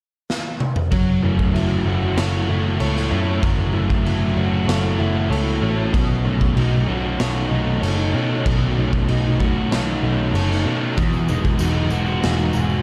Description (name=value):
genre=rock, shoegaze and dream pop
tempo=95 BPM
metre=4/4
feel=straight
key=unclear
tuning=A4 = 440 Hz
part: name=raw garage drum kit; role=drums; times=0.3-12.4 s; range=crash cymbal, kick drum, snare drum, toms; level=-26 LUFS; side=equal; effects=none
part: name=direct-recorded clean electric guitar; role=arpeggios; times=0.9-12.8 s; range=F#3 to A4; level=-33 LUFS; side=equal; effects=lush chorus, digital delay
part: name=overdriven electric guitar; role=riff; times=0.9-12.8 s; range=E2 to C#5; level=-27 LUFS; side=equal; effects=reverse reverb
part: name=thick fuzz guitar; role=riff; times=0.9-12.8 s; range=E2 to C#5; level=-27 LUFS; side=equal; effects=distortion, ensemble chorus
part: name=vintage muted picked electric bass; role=bass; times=0.9-12.8 s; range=E1 to B2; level=-24 LUFS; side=equal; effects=none
part: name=tambourine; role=percussion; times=11.0-12.8 s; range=none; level=-44 LUFS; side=equal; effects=none
room=light reverb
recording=dark, warm production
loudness=-20 LUFS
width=mono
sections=0.9-12.8 A section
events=drum fill 0.3-0.9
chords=0.0 N.C.; 0.9 F#m7; 5.9 B9; 11.0 Emaj9